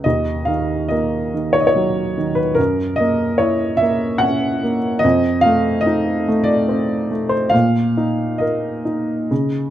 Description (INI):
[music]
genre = classical, lyrical solo piano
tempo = 72 BPM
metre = 3/4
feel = uneven beats, rubato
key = Eb minor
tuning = A4 = 440 Hz
[part]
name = warm upright piano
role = solo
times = 0.0-9.7 s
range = Eb2 to Gb5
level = -16 LUFS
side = equal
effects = none
[sound]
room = light reverb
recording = close, detailed microphones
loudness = -16 LUFS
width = side -12 dB against mid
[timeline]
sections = 0.1-9.7 A section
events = none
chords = 0.1 Ebm; 2.6 Gb7; 5.0 F7; 7.5 Bbsus4